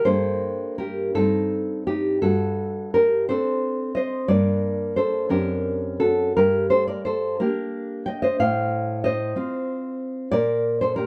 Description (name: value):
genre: romantic piece for solo classical guitar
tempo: 54-63 BPM (dotted quarters)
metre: 6/8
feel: rubato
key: G minor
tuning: A4 = 439 Hz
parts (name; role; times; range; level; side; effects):
- nylon-string guitar; solo; 0.0-11.1 s; F#2 to G5; -23 LUFS; equal; none
room: light reverb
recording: none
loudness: -23 LUFS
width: mono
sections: 0.1-11.1 A section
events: none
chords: 0.1 Gm; 1.1 Adim/G; 2.2 D7/G; 4.3 Gm; 5.3 D7/F#; 6.4 Gm; 8.4 F/A; 10.3 Bb5